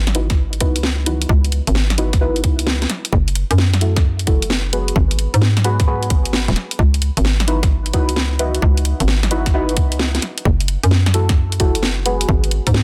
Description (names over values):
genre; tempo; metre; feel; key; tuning
UK garage, two-step garage; 131 BPM; 4/4; swing 66% on 16ths; C# minor; A4 = 440 Hz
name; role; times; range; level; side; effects
hollow knocking FM bass; bass; 0.0-12.8 s; D#1 to G#2; -20 LUFS; equal; none
deep mellow chord stab; stabs; 0.1-12.8 s; D#4 to B4; -26 LUFS; equal; chorus, phaser, delay
garage drum kit; drums; 0.1-12.8 s; hi-hat, snare drum; -24 LUFS; equal; small room reverb
electronic kick drum; drums; 0.3-12.7 s; none; -19 LUFS; equal; small room reverb
room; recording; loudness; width
digital ambience; dense, heavily limited modern master; -17 LUFS; mono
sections
0.0-12.8 A section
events
none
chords
0.0 C#m11; 2.9 F#m7; 5.0 G#m7; 6.8 C#m11; 10.2 F#m7; 12.3 G#m7